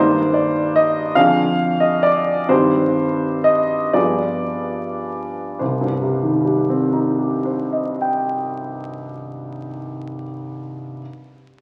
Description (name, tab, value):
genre	classical, romantic character piece for solo piano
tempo	34-50 BPM (dotted quarters)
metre	6/8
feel	rubato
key	C minor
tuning	A4 = 440 Hz
part	warm grand piano	solo	0.0-11.0 s	C2 to G5	-20 LUFS	equal	none
room	wet recital hall reverb, RT60 1.7 s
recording	very old 78 rpm record, vinyl crackle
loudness	-19 LUFS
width	mono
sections	0.0-5.6 A section; 5.6-8.8 B section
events	slowing down 0.0-5.6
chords	0.0 Eb/G; 1.2 Ddim/F; 2.5 Cm/G; 4.0 G7b9; 5.6 Cm